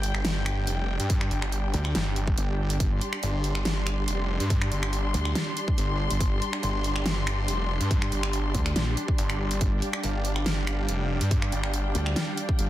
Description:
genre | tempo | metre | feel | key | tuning
heavy wobble dubstep | 141 BPM | 4/4 | half-time | unclear | A4 = 440 Hz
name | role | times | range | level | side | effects
supersaw pad | sustained chords | 0.0-12.7 s | G3 to C6 | -34 LUFS | right 1 dB | sidechain pumping, low-pass filter
snarling distorted saw bass | bass | 0.0-11.9 s | F1 to G2 | -28 LUFS | equal | distortion, overdrive
dubstep drum kit | drums | 0.0-12.7 s | finger snaps, hi-hat, snare drum | -31 LUFS | equal | overdrive
dark symphonic string section | texture | 0.0-12.7 s | D4 to C6 | -34 LUFS | left 2 dB | sidechain pumping
electronic kick drum | drums | 1.1-12.6 s | none | -26 LUFS | equal | none
wobble bass | bass | 1.7-12.7 s | G1 to D2 | -27 LUFS | equal | chorus, overdrive
room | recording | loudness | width
little or no reverb | dense, heavily limited modern master | -24 LUFS | side -14 dB against mid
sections
0.0-12.7 A section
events
none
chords
0.0 G5

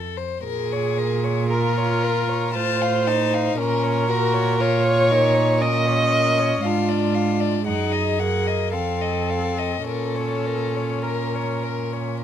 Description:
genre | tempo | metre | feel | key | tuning
classical, slow romantic movement for string quartet | 57 BPM | 3/4 | uneven beats, rubato | Bb minor | A4 = 442 Hz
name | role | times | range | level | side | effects
warm violin | melody | 0.0-12.2 s | A4 to A5 | -27 LUFS | left 12 dB | none
clear cello | bass | 0.0-12.2 s | F2 to Bb2 | -24 LUFS | right 4 dB | none
warm viola | accompaniment | 0.4-12.2 s | F4 to Eb5 | -23 LUFS | right 1 dB | none
rich violin | second line | 1.5-12.2 s | Bb3 to Gb4 | -27 LUFS | left 4 dB | none
room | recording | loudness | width
moderate studio reverb, RT60 0.6 s | none | -19 LUFS | side -9 dB against mid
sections
0.0-12.2 A section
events
none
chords
0.4 Bbm; 2.5 F/A; 3.6 Bbm; 6.6 Ddim/Ab; 7.7 Ebm/Gb; 8.7 F7; 9.9 Bbm

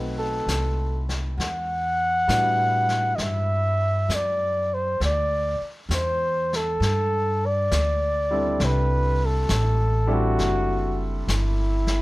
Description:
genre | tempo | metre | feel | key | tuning
jazz ballad | 66 BPM | 4/4 | swing 67% on 8ths | unclear | A4 = 440 Hz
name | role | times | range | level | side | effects
warm concert grand piano | accompaniment | 0.0-12.0 s | G3 to B4 | -31 LUFS | equal | none
upright bass | bass | 0.0-12.0 s | F#1 to A2 | -25 LUFS | equal | none
breathy flugelhorn | melody | 0.2-12.0 s | E4 to F#5 | -24 LUFS | equal | none
vintage brush drum kit | drums | 0.5-12.0 s | brushed snare drum, hi-hat, snare drum | -32 LUFS | left 2 dB | none
room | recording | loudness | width
light reverb | close, detailed microphones | -21 LUFS | side -19 dB against mid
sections
0.0-12.0 A section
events
none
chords
0.0 B7b9; 1.4 Em9; 5.0 Dsus2; 6.8 Gsus2; 8.6 C69

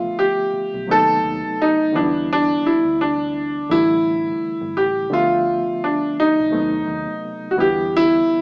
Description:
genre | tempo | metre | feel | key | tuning
lush 1970s-style soul | 85 BPM | 4/4 | swing 58% on 16ths | D dorian | A4 = 440 Hz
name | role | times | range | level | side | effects
clear baby grand piano | melody | 0.0-8.4 s | D4 to A4 | -20 LUFS | equal | none
barky reed electric piano | accompaniment | 0.0-8.4 s | C3 to E5 | -29 LUFS | equal | overdrive, fast tremolo
vintage muted fingered electric bass | bass | 0.0-8.2 s | G1 to E2 | -37 LUFS | equal | none
room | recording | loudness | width
moderate lush hall reverb, RT60 2.5 s | rough home demo mix, small speaker sound | -19 LUFS | mono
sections
0.0-8.4 A section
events
none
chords
0.0 Dm69; 0.9 B7b9/D#; 1.9 Em7; 3.7 A7sus4; 5.1 Dm69; 6.5 B7b9/D#; 7.6 Em7

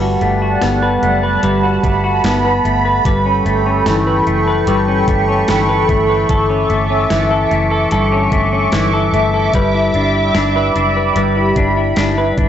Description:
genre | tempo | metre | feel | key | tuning
dream pop | 74 BPM | 4/4 | straight | unclear | A4 = 436 Hz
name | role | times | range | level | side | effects
phased analog pad | sustained chords | 0.0-12.5 s | G3 to D6 | -16 LUFS | right 1 dB | phaser, chorus, tremolo
semi-hollow electric guitar | arpeggios | 0.0-12.5 s | G2 to B4 | -16 LUFS | left 2 dB | lush chorus, analog delay
vintage muted fingered electric bass | bass | 0.0-12.5 s | F#1 to G1 | -19 LUFS | equal | tube saturation
gated 80s digital drum machine | drums | 0.2-12.5 s | hi-hat, kick drum, snare drum | -20 LUFS | equal | gated reverb, gated reverb snare
room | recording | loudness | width
light reverb | dry, gritty hardware recording, nothing above 7.9 kHz | -12 LUFS | side -10 dB against mid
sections
0.0-12.5 A section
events
none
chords
0.0 Gmaj9; 3.1 A9; 6.3 A7; 9.5 Em7

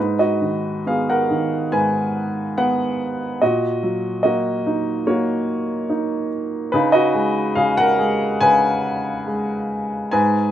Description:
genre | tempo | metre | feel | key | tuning
classical, lyrical solo piano | 71 BPM | 4/4 | rubato | unclear | A4 = 442 Hz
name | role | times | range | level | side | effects
clear grand piano | solo | 0.0-10.5 s | G#2 to G#5 | -17 LUFS | equal | none
room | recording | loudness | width
light reverb | minimal, uncompressed stereo recording | -18 LUFS | side -11 dB against mid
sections
0.0-10.5 A section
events
none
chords
0.0 G#m7; 3.4 F#6/A#; 6.7 C#sus2

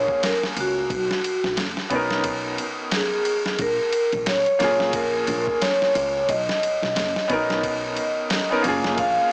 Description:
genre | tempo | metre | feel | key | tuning
trip hop | 89 BPM | 4/4 | swing 58% on 16ths | unclear | A4 = 441 Hz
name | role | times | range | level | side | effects
vibraphone with medium mallets | melody | 0.0-9.3 s | Gb4 to F5 | -25 LUFS | equal | dub echo
bright upright piano | accompaniment | 0.0-9.3 s | Bb3 to F5 | -28 LUFS | equal | tremolo, low-pass filter, tape echo
upright bass | bass | 0.0-9.2 s | F#1 to Bb2 | -36 LUFS | equal | transformer saturation
boom bap sampler-style drum kit | drums | 0.1-9.2 s | kick drum, ride cymbal, snare drum | -29 LUFS | equal | none
room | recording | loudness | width
light reverb, small room ambience | blown-out, overdriven recording, overdrive, small speaker sound | -23 LUFS | mono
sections
0.0-9.3 A section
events
none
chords
0.0 Bbm7; 0.9 Bmaj9; 3.6 Bbm7; 6.3 Bmaj9

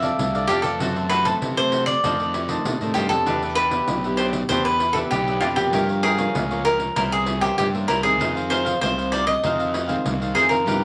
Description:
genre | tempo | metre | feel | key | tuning
samba and choro | 97 BPM | 4/4 | straight | unclear | A4 = 440 Hz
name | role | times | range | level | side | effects
cavaquinho | melody | 0.0-10.8 s | F4 to E5 | -24 LUFS | equal | none
cavaquinho | accompaniment | 0.0-10.8 s | D4 to F5 | -30 LUFS | equal | none
nylon-string guitar | accompaniment | 0.0-10.8 s | F2 to A4 | -33 LUFS | equal | none
fuzz fingered electric bass | bass | 0.0-10.8 s | B1 to C3 | -30 LUFS | equal | overdrive
pandeiro | percussion | 0.0-10.8 s | none | -31 LUFS | equal | none
room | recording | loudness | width
wet studio reverb, RT60 0.7 s | none | -21 LUFS | mono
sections
0.0-10.8 A section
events
none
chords
0.0 F6; 0.8 F#m7b5; 2.0 F13; 3.3 Em7; 5.7 Gm7b5; 7.0 C7b9; 8.2 Fm7

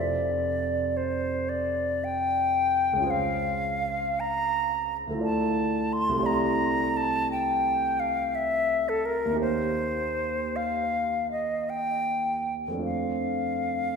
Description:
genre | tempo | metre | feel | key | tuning
classical, impressionist duo for flute and grand piano | 51-60 BPM | 3/4 | rubato | F major | A4 = 440 Hz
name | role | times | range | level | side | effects
silver concert flute | melody | 0.0-14.0 s | A4 to C6 | -26 LUFS | left 1 dB | none
dark grand piano | accompaniment | 0.0-14.0 s | F1 to D5 | -30 LUFS | right 2 dB | none
room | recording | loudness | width
wet concert hall reverb, RT60 1.9 s | minimal, uncompressed stereo recording | -24 LUFS | side -5 dB against mid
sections
0.0-14.0 A section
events
none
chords
0.0 F6; 3.1 Dbmaj7; 5.2 Dmadd9; 6.3 C69; 9.4 Eb7; 12.8 F6

